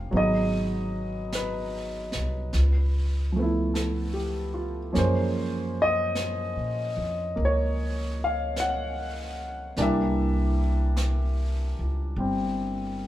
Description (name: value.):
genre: jazz ballad.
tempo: 50 BPM.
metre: 4/4.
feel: swing 68% on 8ths.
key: unclear.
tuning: A4 = 440 Hz.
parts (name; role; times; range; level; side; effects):
warm concert grand piano; accompaniment; 0.0-13.1 s; E3 to Gb5; -27 LUFS; equal; none.
upright bass; bass; 0.0-13.1 s; G1 to Bb2; -28 LUFS; equal; none.
jazz brush drum kit; drums; 0.1-13.1 s; brushed snare drum, hi-hat, snare drum; -39 LUFS; right 2 dB; none.
room: light reverb.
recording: band playing live in one room.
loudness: -24 LUFS.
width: side -13 dB against mid.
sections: 0.0-13.1 A section.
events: none.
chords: 0.1 Abm7; 2.5 Db7alt; 4.9 Gbmaj7; 9.8 C7.